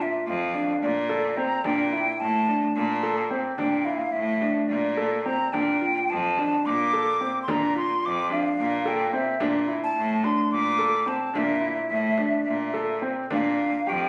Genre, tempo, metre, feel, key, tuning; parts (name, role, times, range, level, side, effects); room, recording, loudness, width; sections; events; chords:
contemporary instrumental, chamber music in an uneven meter; 217 BPM (eighths); 7/8; straight; Bb lydian; A4 = 439 Hz
hollow concert flute; melody; 0.0-14.1 s; D5 to D6; -29 LUFS; equal
warm concert grand piano; arpeggios; 0.0-14.1 s; C4 to A4; -29 LUFS; equal
bright cello; bass; 0.0-14.1 s; F2 to Bb2; -31 LUFS; equal
frame drum; percussion; 0.5-13.6 s; -40 LUFS; equal
moderate scoring stage reverb, RT60 1.4 s; recorded on a phone in the room, club reverb, compression, nothing above 10.3 kHz; -25 LUFS; mono
0.0-13.3 A section
0.0 Bbmaj7; 1.6 Dsus2; 5.5 Bb; 9.4 Dsus2; 13.3 Bb6